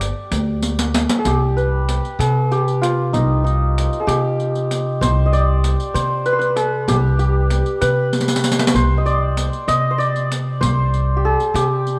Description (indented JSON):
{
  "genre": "Persian modal ensemble",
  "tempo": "64 BPM (dotted quarters)",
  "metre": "6/8",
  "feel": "straight",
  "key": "C avaz esfahan",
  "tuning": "A4 = 440 Hz",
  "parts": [
    { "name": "santur", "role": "melody", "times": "0.0-12.0 s", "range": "Eb4 to Eb5", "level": "-22 LUFS", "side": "equal", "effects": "none" },
    { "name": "upright bass", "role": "bass", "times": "0.0-12.0 s", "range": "G1 to C3", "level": "-21 LUFS", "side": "equal", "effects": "none" },
    { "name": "riq", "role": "percussion", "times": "0.0-11.9 s", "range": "none", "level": "-25 LUFS", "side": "equal", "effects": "none" }
  ],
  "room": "light reverb, small room ambience",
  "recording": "none",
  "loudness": "-18 LUFS",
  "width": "mono",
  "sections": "0.0-1.3 A section; 1.3-12.0 B section",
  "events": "drum fill 0.6-1.3, 8.1-8.7",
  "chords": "none",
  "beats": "0.32 | 1.26 2.20 | 3.13 4.07 | 5.01 5.94 | 6.88 7.81 | 8.75 9.68 | 10.62 11.55"
}